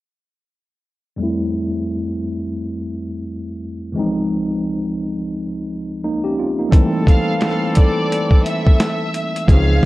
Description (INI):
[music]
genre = hip hop, boom-bap hip-hop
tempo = 87 BPM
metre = 4/4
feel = swing 62% on 16ths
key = F major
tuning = A4 = 439 Hz
[part]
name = mellow tine electric piano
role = accompaniment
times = 1.2-9.9 s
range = Db2 to G4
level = -20 LUFS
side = equal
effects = medium stereo tremolo, high-pass filter, low-pass filter
[part]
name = clear saxophone section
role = stabs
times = 6.7-9.9 s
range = E3 to A4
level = -23 LUFS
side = left 2 dB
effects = high-pass filter, low-pass filter, analog delay
[part]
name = boom bap sampler-style drum kit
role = drums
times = 6.7-9.9 s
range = hi-hat, kick drum, snare drum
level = -12 LUFS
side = equal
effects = none
[part]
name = bright studio violin section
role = melody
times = 7.1-9.9 s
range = D5 to F6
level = -24 LUFS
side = right 1 dB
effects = high-pass filter, low-pass filter, analog delay
[part]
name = deep dub fingered electric bass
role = bass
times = 9.5-9.8 s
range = Db2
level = -15 LUFS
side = equal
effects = tube saturation
[sound]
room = little or no reverb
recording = worn, warbling old tape, cassette tape, warbly pitch drift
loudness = -16 LUFS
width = side -18 dB against mid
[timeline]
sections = 1.2-6.7 A section; 6.7-9.9 B section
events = filter sweep on tine electric piano 1.2-6.7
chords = 1.2 Fmaj9; 4.0 Dbmaj9; 6.7 Fmaj9